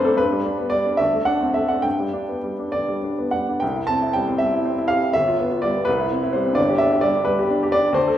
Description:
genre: classical, romantic character piece for solo piano.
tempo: 66-89 BPM (dotted quarters).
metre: 6/8.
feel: rubato.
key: G major, C major from 3.6 s.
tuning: A4 = 440 Hz.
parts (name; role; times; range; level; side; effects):
clear upright piano; solo; 0.0-8.2 s; G1 to A5; -18 LUFS; equal; none.
room: wet recital hall reverb, RT60 1.5 s.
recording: recorded in a church or concert hall.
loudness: -18 LUFS.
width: side -11 dB against mid.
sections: 0.0-3.6 A section; 3.6-8.2 B section.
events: none.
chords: 0.2 G; 1.0 D5; 1.8 G; 3.6 C; 5.1 G7; 5.9 C; 6.6 G.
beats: | 0.18 0.98 | 1.85 2.74 | 3.62 4.39 | 5.15 5.87 | 6.57 7.27 | 7.96.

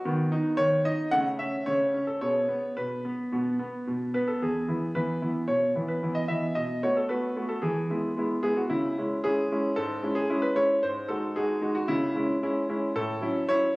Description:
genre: classical-period piano sonatina.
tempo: 112 BPM.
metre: 4/4.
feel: straight.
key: E major.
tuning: A4 = 441 Hz.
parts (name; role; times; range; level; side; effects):
clear grand piano; solo; 0.0-13.8 s; E2 to F#5; -25 LUFS; equal; none.
room: moderate recital hall reverb, RT60 1.4 s.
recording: recorded on a phone in the room, studio reverb.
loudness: -25 LUFS.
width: side -23 dB against mid.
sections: 0.0-4.4 A section; 4.4-13.8 B section.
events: none.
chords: 0.1 B/D#; 1.1 A/C#; 2.2 G#madd11/B; 3.3 B5; 4.4 E; 6.6 B5; 7.6 E; 8.7 C#m; 10.8 G#5; 11.9 C#m; 13.0 F#m7/A.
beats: | 0.07 0.60 1.13 1.67 | 2.22 2.77 3.32 3.87 | 4.42 4.96 5.49 6.03 | 6.57 7.10 7.63 8.17 | 8.70 9.24 9.77 10.30 | 10.84 11.37 11.89 12.42 | 12.96 13.49.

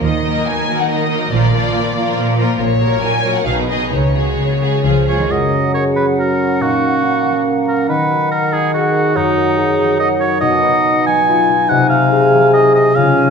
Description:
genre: classical, dramatic, fast romantic movement for symphony orchestra.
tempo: 140 BPM.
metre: 3/4.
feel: rubato.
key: F# major.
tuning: A4 = 439 Hz.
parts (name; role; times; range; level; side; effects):
rich symphonic violin section; melody; 0.0-5.1 s; C#5 to Ab5; -21 LUFS; left 3 dB; none.
rich symphonic violin section; second line; 0.0-5.3 s; Eb4 to C#5; -22 LUFS; left 3 dB; none.
concert harp; arpeggios; 0.0-13.3 s; F#2 to B4; -20 LUFS; left 6 dB; none.
rich symphonic cello section; bass; 0.0-5.2 s; Bb2 to E#3; -20 LUFS; right 3 dB; none.
rich symphonic double bass section; bass; 0.0-5.2 s; Bb1 to Eb2; -22 LUFS; right 5 dB; none.
rich symphonic viola section; accompaniment; 0.2-5.3 s; D#3 to F#4; -22 LUFS; right 4 dB; none.
warm oboe; second line; 5.1-13.3 s; D#4 to G#5; -16 LUFS; right 1 dB; none.
mellow clarinet; second line; 5.3-13.3 s; C#4 to D#4; -22 LUFS; right 1 dB; none.
silver concert flute; second line; 5.3-13.3 s; F#5 to G#5; -23 LUFS; left 1 dB; none.
mellow bassoon; accompaniment; 5.3-13.3 s; B2 to A#3; -20 LUFS; right 3 dB; none.
dark French horn section; sustained chords; 5.3-13.3 s; C#4 to A#4; -18 LUFS; left 1 dB; none.
room: wet recital hall reverb, RT60 1.6 s.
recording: minimal, uncompressed stereo recording.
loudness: -12 LUFS.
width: side -6 dB against mid.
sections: 0.0-5.3 A section; 5.3-13.3 B section.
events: none.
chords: 0.0 Ebm; 1.3 Bb; 2.6 F#/A#; 3.5 G#m/B; 3.9 C#sus4; 4.8 C#; 5.3 F#; 6.6 F#/A#; 7.9 D#m; 9.2 D#m/F#; 10.4 B; 11.7 G#7/B#.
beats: | 0.02 0.46 0.89 | 1.32 1.75 2.18 | 2.60 3.02 3.46 | 3.92 4.38 4.84 | 5.30 5.74 6.18 | 6.61 7.03 7.46 | 7.88 8.31 8.74 | 9.16 9.58 10.00 | 10.42 10.84 11.28 | 11.70 12.12 12.54 | 12.96.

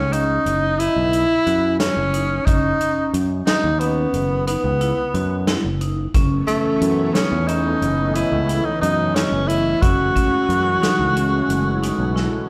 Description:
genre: progressive instrumental, band music in an uneven meter.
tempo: 180 BPM (eighths).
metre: 11/8.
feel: straight.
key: F# dorian.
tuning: A4 = 440 Hz.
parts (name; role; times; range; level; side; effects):
warm tenor saxophone; melody; 0.0-12.5 s; A3 to F#4; -22 LUFS; equal; none.
overdriven picked electric bass; bass; 0.0-12.3 s; F#1 to F#2; -25 LUFS; equal; none.
vibraphone with hard mallets; arpeggios; 0.1-12.3 s; C#4 to D#5; -28 LUFS; equal; none.
natural country drum kit; drums; 0.1-12.3 s; hi-hat, kick drum, snare drum; -25 LUFS; equal; none.
analog string pad; accompaniment; 6.3-12.5 s; E3 to C#4; -28 LUFS; equal; ensemble chorus.
room: moderate concert hall reverb, RT60 1.9 s.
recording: recorded in a church or concert hall.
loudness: -19 LUFS.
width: mono.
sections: 0.0-12.5 A section.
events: drum fill 12.2-12.5.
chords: 0.0 F#7(no3); 2.5 C#9sus4/F#; 6.1 Aadd9/F#; 9.8 F#m7.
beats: 0.12 0.46 0.79 1.13 1.46 1.80 2.13 | 2.46 2.80 3.13 3.47 3.80 4.14 4.47 4.81 5.14 5.47 5.81 | 6.14 6.48 6.81 7.15 7.48 7.82 8.15 8.48 8.82 9.15 9.49 | 9.82 10.15 10.49 10.82 11.16 11.49 11.83 12.16.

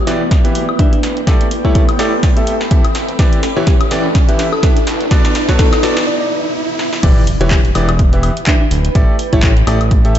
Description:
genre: piano house.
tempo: 125 BPM.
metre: 4/4.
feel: swing 57% on 16ths.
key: E minor.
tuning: A4 = 442 Hz.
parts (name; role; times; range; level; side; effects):
fat analog bass; bass; 0.0-10.2 s; D1 to B1; -19 LUFS; equal; sidechain pumping, high-pass filter.
riser and impact; sound effects; 0.0-9.0 s; none; -22 LUFS; right 2 dB; none.
granular cloud pad; texture; 0.0-10.2 s; B3 to D6; -23 LUFS; left 1 dB; built-in reverb, sidechain pumping.
bright concert grand piano; riff; 0.1-10.2 s; E3 to E5; -19 LUFS; equal; sidechain pumping, low-pass filter, tape echo.
punchy analog drum machine; drums; 0.1-10.2 s; crash cymbal, handclaps, hi-hat, snare drum, woodblock; -22 LUFS; left 1 dB; high-pass filter on hats, high-pass filter on snare, high-pass filter on perc, high-pass filter on cymbals.
electronic kick drum; drums; 0.3-10.0 s; none; -12 LUFS; equal; none.
bell-like FM electric piano; melody; 0.8-9.5 s; D4 to D5; -23 LUFS; left 2 dB; chorus, tape echo.
room: light reverb.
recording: nothing above 7.9 kHz.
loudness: -11 LUFS.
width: side -11 dB against mid.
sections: 0.0-7.0 A section; 7.0-10.2 B section.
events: build-up 0.0-7.0; drum fill 0.0-6.1, 6.8; riser 0.0-7.0; break 6.1-7.0; drop 7.0-10.2; impact 7.0-9.0.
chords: 0.0 Em7; 1.3 A7sus4; 3.0 Em7; 4.9 Bm7; 7.0 Em7; 9.0 A7sus4.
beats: 0.31 0.79 | 1.27 1.75 2.23 2.71 | 3.19 3.67 4.15 4.63 | 5.11 5.59 6.07 6.55 | 7.03 7.51 7.99 8.47 | 8.95 9.43 9.91.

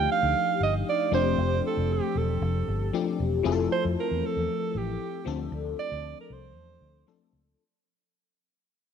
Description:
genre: polished 1980s jazz-funk pop.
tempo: 116 BPM.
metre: 4/4.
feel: swing 54% on 16ths.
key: F major.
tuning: A4 = 442 Hz.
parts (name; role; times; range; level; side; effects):
warm alto saxophone; melody; 0.0-7.1 s; G4 to F5; -28 LUFS; right 8 dB; cassette tape.
FM electric piano; accompaniment; 0.0-7.6 s; F3 to A4; -29 LUFS; left 10 dB; phaser, ensemble chorus, cassette tape.
vintage muted fingered electric bass; bass; 0.0-7.5 s; E1 to F2; -30 LUFS; equal; none.
room: moderate lush hall reverb, RT60 3.0 s.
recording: home recording on cassette.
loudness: -25 LUFS.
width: side -7 dB against mid.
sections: 0.0-3.5 A section; 3.5-7.6 B section.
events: fade-out 3.5-7.6.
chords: 0.0 F13; 1.1 F69; 3.5 Fmaj7; 5.3 Dm7.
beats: 0.35 0.87 | 1.39 1.90 2.42 2.94 | 3.46 3.97 4.49 5.01 | 5.53 6.04 6.56 7.08.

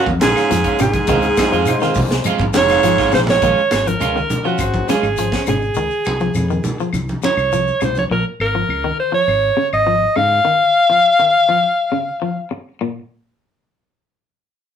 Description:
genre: afrobeat.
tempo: 102 BPM.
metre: 4/4.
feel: straight.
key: Bb minor.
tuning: A4 = 441 Hz.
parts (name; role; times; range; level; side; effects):
edgy alto saxophone; melody; 0.0-12.5 s; Gb4 to F5; -16 LUFS; equal; none.
raspy baritone saxophone; second line; 0.0-3.4 s; Ab2; -21 LUFS; right 2 dB; none.
electric guitar at the edge of break-up; stabs; 0.0-5.5 s; Ab3 to F4; -22 LUFS; right 7 dB; none.
fingered electric bass; bass; 0.1-10.4 s; F1 to Ab2; -23 LUFS; equal; none.
tight funk drum kit; drums; 0.1-5.6 s; hi-hat, kick drum, snare drum; -23 LUFS; equal; none.
congas; percussion; 0.1-8.1 s; none; -23 LUFS; right 1 dB; none.
shekere; percussion; 0.1-8.1 s; none; -32 LUFS; left 2 dB; none.
twangy electric guitar; arpeggios; 0.2-13.0 s; Bb2 to F3; -23 LUFS; left 4 dB; none.
claves; percussion; 0.4-10.3 s; none; -30 LUFS; left 3 dB; none.
barky tine electric piano; accompaniment; 1.1-5.5 s; Db4 to C5; -26 LUFS; left 4 dB; overdrive.
room: wet studio ambience, RT60 0.5 s.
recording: rough rehearsal-room recording.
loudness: -14 LUFS.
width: side -8 dB against mid.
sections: 0.0-3.4 A section; 3.4-12.8 B section; 12.8-14.8 C section.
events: drum fill 3.0-3.4.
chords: 0.0 Bbm7 (rootless); 1.1 Dbmaj7; 3.4 Bbm7; 5.8 Dbmaj7; 8.1 Bbm7; 10.4 Db; 12.8 N.C..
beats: 0.51 | 1.09 1.68 2.26 2.84 | 3.43 4.01 4.59 5.18 | 5.76 6.35 6.93 7.52 | 8.11 8.69 9.28 9.86 | 10.45 11.04 11.62 12.21 | 12.80.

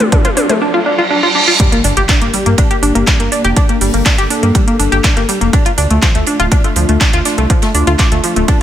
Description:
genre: melodic techno.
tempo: 122 BPM.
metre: 4/4.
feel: straight.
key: G minor.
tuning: A4 = 439 Hz.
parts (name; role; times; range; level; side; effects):
dark analog pad; sustained chords; 0.0-8.6 s; A3 to A4; -21 LUFS; equal; chorus, sidechain pumping.
tight sequenced synth; arpeggios; 0.0-8.6 s; F3 to G4; -15 LUFS; left 1 dB; chorus, sidechain pumping, tape echo.
round analog bass; bass; 0.0-8.4 s; D1 to G2; -15 LUFS; equal; sidechain pumping, high-pass filter.
house drum kit; drums; 0.0-8.6 s; handclaps, hi-hat, toms; -17 LUFS; right 1 dB; studio ambience.
riser, reverse cymbal and impact; sound effects; 0.0-3.6 s; none; -17 LUFS; right 2 dB; none.
electronic kick drum; drums; 0.1-8.6 s; none; -12 LUFS; equal; studio ambience.
open jazz drum kit; drums; 1.6-8.6 s; hi-hat, ride cymbal, snare drum; -27 LUFS; right 4 dB; high-pass filter on cymbals, studio ambience, high-pass filter on hats, high-pass filter on snare, high-pass filter on room.
room: light reverb, studio reverb.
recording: none.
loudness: -10 LUFS.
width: side -11 dB against mid.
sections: 0.0-1.6 A section; 1.6-8.6 B section.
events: build-up 0.0-1.6; drum fill 0.0-0.6; riser 0.0-1.6; filter sweep on synth arpeggio sound 0.0-1.6; reverse cymbal 0.6-1.6; drop 1.6-8.6; impact 1.6-3.6.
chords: 0.0 Dm; 1.6 Gm; 5.5 Dm.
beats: 0.12 0.61 1.11 | 1.60 2.09 2.58 3.07 | 3.56 4.06 4.55 5.04 | 5.53 6.02 6.51 7.01 | 7.50 7.99 8.48.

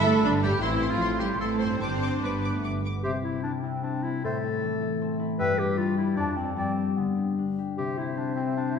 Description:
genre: classical, dramatic, fast romantic movement for symphony orchestra.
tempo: 144-158 BPM.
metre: 3/4.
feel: rubato.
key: C major.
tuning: A4 = 439 Hz.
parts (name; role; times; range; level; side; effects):
mellow hollow flute section; second line; 0.0-8.8 s; E5 to D6; -35 LUFS; equal; none.
rich studio violin section; second line; 0.0-2.6 s; D4 to C5; -37 LUFS; left 4 dB; none.
warm clarinet; second line; 0.0-8.8 s; B3 to B4; -31 LUFS; left 1 dB; none.
warm oboe; second line; 0.0-8.8 s; D4 to E5; -36 LUFS; equal; none.
rich studio viola section; accompaniment; 0.0-2.6 s; D4 to C5; -30 LUFS; right 1 dB; none.
concert harp; arpeggios; 0.0-8.8 s; F2 to D5; -33 LUFS; left 7 dB; none.
rich chamber double bass section; bass; 0.0-3.0 s; G1 to A1; -31 LUFS; right 3 dB; none.
rich symphonic cello section; bass; 0.0-2.6 s; D3 to C4; -29 LUFS; right 4 dB; none.
rich symphonic violin section; melody; 0.1-2.9 s; B5 to D6; -38 LUFS; left 3 dB; none.
mellow French horn section; sustained chords; 0.6-8.8 s; F3 to D4; -31 LUFS; left 3 dB; none.
room: wet scoring stage reverb, RT60 1.6 s.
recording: nothing above 11.0 kHz.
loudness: -25 LUFS.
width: side -6 dB against mid.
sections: 0.0-3.0 A section; 3.0-8.8 B section.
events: none.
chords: 0.0 G7; 0.6 Am; 1.8 G; 3.0 C; 4.2 Am; 5.4 Em/G; 6.2 Dm/F; 6.6 G; 7.8 C.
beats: 0.24 | 0.62 1.00 1.40 | 1.81 2.22 2.63 | 3.04 3.44 3.83 | 4.24 4.62 5.01 | 5.39 5.77 6.17 | 6.57 6.97 7.38 | 7.78 8.17 8.57.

